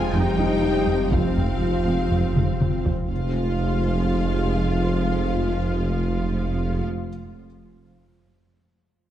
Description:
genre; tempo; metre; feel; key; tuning
cinematic, hybrid orchestral and electronic film score; 121 BPM; 4/4; straight; F minor; A4 = 440 Hz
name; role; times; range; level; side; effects
warm symphonic violin section; melody; 0.0-6.8 s; F5 to Ab5; -36 LUFS; left 6 dB; none
rich symphonic violin section; second line; 0.0-6.8 s; F5 to Ab5; -37 LUFS; left 2 dB; none
clear symphonic viola section; accompaniment; 0.0-6.8 s; C4 to F4; -33 LUFS; equal; none
bright trombone section; sustained chords; 0.0-6.8 s; C3 to Ab3; -34 LUFS; right 1 dB; none
glassy FM pad; sustained chords; 0.0-6.8 s; F3 to C5; -31 LUFS; right 1 dB; ensemble chorus, built-in reverb
mellow French horn section; sustained chords; 0.0-6.8 s; F4 to Ab4; -30 LUFS; left 4 dB; none
thumb-piano-like synth pluck; arpeggios; 0.0-2.5 s; F3 to F4; -32 LUFS; right 3 dB; none
plucky analog bass; riff; 0.0-3.0 s; F2; -28 LUFS; right 1 dB; none
dark detuned saw bass; bass; 0.0-6.8 s; F1; -28 LUFS; equal; none
warm studio cello section; bass; 0.0-6.8 s; F3 to Ab3; -32 LUFS; right 2 dB; none
felt-muted upright piano; texture; 0.0-3.1 s; Eb4 to G5; -33 LUFS; left 3 dB; digital delay
mellow tuba; bass; 0.1-6.8 s; F1; -29 LUFS; right 2 dB; none
rich chamber double bass section; bass; 0.1-6.8 s; F1; -29 LUFS; right 2 dB; none
taiko ensemble; drums; 1.1-3.1 s; none; -25 LUFS; equal; none
room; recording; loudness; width
wet concert hall reverb, RT60 2.1 s; lossy compression artefacts; -20 LUFS; side -11 dB against mid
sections
0.0-3.1 A section; 3.1-7.1 B section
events
drum fill 2.4-3.1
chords
0.0 Fm

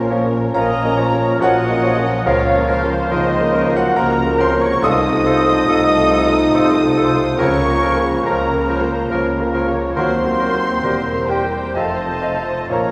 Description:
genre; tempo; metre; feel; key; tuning
classical, romantic movement for piano and orchestra; 70 BPM; 3/4; rubato; Bb minor; A4 = 440 Hz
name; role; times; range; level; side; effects
clear concert grand piano; melody; 0.0-12.9 s; C2 to Eb6; -22 LUFS; equal; none
muted symphonic violin section; melody; 0.0-12.9 s; A4 to F5; -32 LUFS; equal; none
muted symphonic viola section; accompaniment; 0.0-12.9 s; Ab4 to Eb5; -28 LUFS; equal; none
dark trombone section; sustained chords; 0.0-12.9 s; F3 to Eb4; -29 LUFS; equal; none
muted symphonic cello section; bass; 0.0-12.9 s; Eb2 to Db3; -28 LUFS; equal; none
muted symphonic double bass section; bass; 0.0-12.9 s; E1 to Eb2; -29 LUFS; equal; none
bright clarinet; second line; 0.1-12.9 s; A4 to Eb5; -28 LUFS; equal; none
clear bassoon; accompaniment; 0.1-12.9 s; F3 to G3; -28 LUFS; equal; none
muted symphonic violin section; second line; 0.5-12.9 s; Eb5 to Eb6; -30 LUFS; equal; none
silver concert flute; second line; 0.5-12.9 s; Eb5 to Eb6; -28 LUFS; equal; none
warm oboe; second line; 0.6-12.9 s; Eb4 to Eb5; -28 LUFS; equal; none
warm French horn section; sustained chords; 0.6-12.9 s; Eb3 to Eb4; -25 LUFS; equal; none
room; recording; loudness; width
wet church reverb, RT60 3.2 s; recorded in a church or concert hall; -17 LUFS; mono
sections
0.0-12.9 A section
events
none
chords
0.0 Bbm; 2.3 Bbm/Db; 4.8 F7/C; 7.4 Bbm/Db; 10.0 Cm7b5/Eb; 10.8 C7/E; 11.8 F7

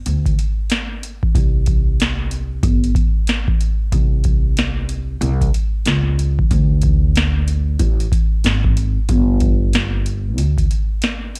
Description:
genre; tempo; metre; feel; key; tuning
hip hop, jazz-hop; 93 BPM; 4/4; swing 62% on 16ths; unclear; A4 = 440 Hz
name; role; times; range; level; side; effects
upright bass; bass; 0.1-10.6 s; G1 to D2; -21 LUFS; equal; none
booming analog drum machine; drums; 0.1-11.4 s; hi-hat, kick drum, snare drum; -19 LUFS; equal; cassette tape
room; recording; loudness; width
little or no reverb; home recording on cassette; -17 LUFS; mono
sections
0.0-9.1 A section; 9.1-11.4 A section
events
none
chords
none

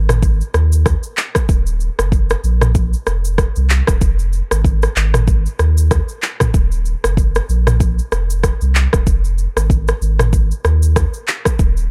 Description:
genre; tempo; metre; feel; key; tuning
afrobeats; 95 BPM; 4/4; swing 58% on 16ths; unclear; A4 = 440 Hz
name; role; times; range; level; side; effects
warm sub bass; bass; 0.0-11.9 s; Eb1 to Eb2; -17 LUFS; equal; none
afro-pop drum kit; drums; 0.1-11.9 s; handclaps, kick drum, rim click, shaker, toms; -18 LUFS; equal; none
room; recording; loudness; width
little or no reverb; dark, warm production; -16 LUFS; mono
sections
0.0-11.9 A section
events
none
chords
none

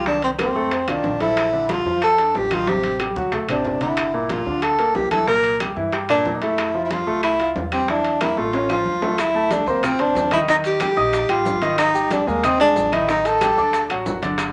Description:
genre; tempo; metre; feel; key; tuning
Afro-Cuban jazz; 184 BPM; 4/4; straight; unclear; A4 = 440 Hz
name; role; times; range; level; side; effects
breathy tenor saxophone; melody; 0.0-13.9 s; Bb3 to Bb4; -22 LUFS; equal; none
warm concert grand piano; accompaniment; 0.0-14.5 s; Bb2 to F6; -26 LUFS; equal; none
upright bass; bass; 0.0-14.5 s; G1 to G2; -38 LUFS; equal; none
bongos; percussion; 0.1-14.5 s; none; -32 LUFS; equal; none
congas; percussion; 0.1-14.5 s; none; -35 LUFS; equal; none
timbales; percussion; 0.2-14.5 s; none; -34 LUFS; equal; none
claves; percussion; 0.4-14.5 s; none; -37 LUFS; equal; none
maracas; percussion; 9.2-14.5 s; none; -45 LUFS; equal; none
room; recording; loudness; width
wet club reverb, RT60 0.7 s; none; -20 LUFS; mono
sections
0.0-9.2 A section; 9.2-14.5 B section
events
drum fill 2.7-4.0, 8.2-9.2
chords
0.1 Cm7; 0.7 F7; 1.4 Bb; 2.7 Am7; 3.3 D5; 4.0 Gm7; 5.3 C7; 6.6 Fmaj7; 7.9 Bbmaj7#11; 8.5 Aaug; 9.2 Dm9; 10.5 Eb; 11.8 Ab5; 13.1 Ebmaj7#11/A; 13.7 D

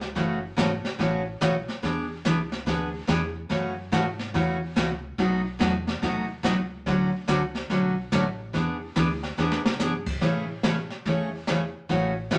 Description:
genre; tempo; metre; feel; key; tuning
country, western swing; 143 BPM; 4/4; swing 64% on 8ths; A major; A4 = 440 Hz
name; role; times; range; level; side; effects
upright bass; bass; 0.0-12.4 s; F#1 to G#2; -40 LUFS; equal; none
jazz brush drum kit; drums; 0.0-12.4 s; brushed snare drum, crash cymbal, hi-hat, kick drum, snare drum; -32 LUFS; equal; none
picked steel-string acoustic guitar; accompaniment; 0.2-12.4 s; B2 to G#4; -28 LUFS; equal; none
room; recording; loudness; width
wet studio reverb, RT60 0.7 s; none; -26 LUFS; mono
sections
0.0-10.2 A section; 10.2-12.4 B section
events
drum fill 9.4-9.8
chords
0.2 F#m7; 1.8 E7; 3.5 F#m9; 5.2 B7; 6.9 Dmaj7; 8.5 E9; 10.2 Amaj7

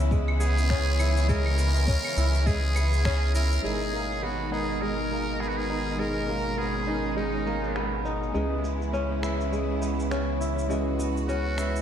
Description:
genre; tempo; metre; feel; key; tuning
organic downtempo; 102 BPM; 4/4; swing 59% on 16ths; G# minor; A4 = 440 Hz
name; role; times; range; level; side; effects
bright studio string section; sustained chords; 0.0-11.8 s; B2 to A#4; -35 LUFS; right 1 dB; sidechain pumping
kora; arpeggios; 0.0-11.8 s; G#3 to E4; -31 LUFS; equal; low-pass filter, ping-pong delay
round analog bass; bass; 0.0-11.8 s; G#1 to C#2; -27 LUFS; equal; none
electronic cabasa, claves and finger snaps; drums; 0.1-11.8 s; none; -39 LUFS; equal; low-pass filter on perc, low-pass filter on snare, low-pass filter on room
electronic kick drum; drums; 0.1-3.2 s; none; -26 LUFS; equal; none
trumpet with metal mute; melody; 0.4-11.8 s; D#4 to A#4; -32 LUFS; equal; analog delay
bell-like tine electric piano; accompaniment; 3.6-11.8 s; G#3 to B4; -32 LUFS; right 1 dB; analog chorus, sidechain pumping, ping-pong delay
room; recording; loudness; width
moderate lush hall reverb, RT60 1.8 s; dreamy mix soaked in reverb; -24 LUFS; side -9 dB against mid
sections
0.0-3.6 A section; 3.6-11.8 B section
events
filter sweep on drum 3.6-11.8; filter sweep on kora 3.6-11.8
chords
0.0 C#m7; 3.6 G#madd9; 8.3 C#m7

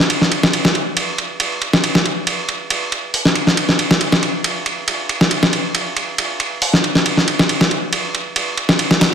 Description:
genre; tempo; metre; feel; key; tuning
breakbeat; 138 BPM; 4/4; straight; none; none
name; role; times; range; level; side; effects
dusty soul sampler-style drum kit; drums; 0.0-9.1 s; hi-hat, ride cymbal, snare drum; -14 LUFS; equal; none
room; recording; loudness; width
light reverb; dense, heavily limited modern master; -14 LUFS; side -8 dB against mid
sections
0.0-9.1 A section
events
none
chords
none

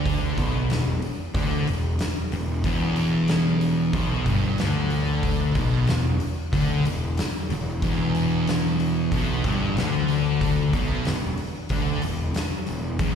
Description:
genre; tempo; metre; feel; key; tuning
stoner and doom metal; 93 BPM; 4/4; straight; E minor; A4 = 439 Hz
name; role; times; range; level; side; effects
thick fuzz guitar; riff; 0.0-13.2 s; E2 to D3; -27 LUFS; left 8 dB; distortion
thick fuzz guitar; riff; 0.0-13.2 s; E2 to D3; -27 LUFS; right 7 dB; distortion, slapback echo
fuzz picked electric bass; bass; 0.0-13.2 s; E1 to D2; -27 LUFS; left 1 dB; overdrive, tube saturation
oversized low-tuned drum kit; drums; 0.1-13.1 s; hi-hat, kick drum, snare drum; -28 LUFS; equal; none
room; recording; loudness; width
little or no reverb; live gig heard through the venue's PA, recital hall reverb; -21 LUFS; side -7 dB against mid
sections
0.0-13.2 A section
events
none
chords
0.0 Em

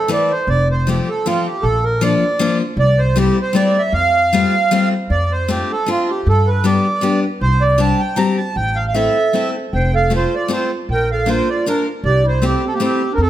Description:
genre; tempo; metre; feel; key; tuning
musette waltz; 156 BPM; 3/4; swing 54% on 8ths; F major; A4 = 436 Hz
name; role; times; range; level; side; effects
accordion; melody; 0.0-13.3 s; F4 to Bb5; -18 LUFS; right 2 dB; none
picked steel-string acoustic guitar; accompaniment; 0.1-13.0 s; E3 to Bb4; -19 LUFS; left 4 dB; none
upright bass; bass; 0.5-13.3 s; F1 to G2; -17 LUFS; equal; none
mellow clarinet; second line; 8.9-13.3 s; Bb3 to C5; -21 LUFS; right 4 dB; none
room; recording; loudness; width
moderate recital hall reverb, RT60 1.7 s; none; -14 LUFS; side -12 dB against mid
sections
0.0-5.1 A section; 5.1-13.3 A section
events
none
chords
0.5 F; 1.6 Bb; 2.8 C6; 3.9 Fadd9; 5.1 F6; 6.3 G; 7.4 Csus2; 8.6 Am; 9.7 F; 10.9 Bb; 12.0 C6

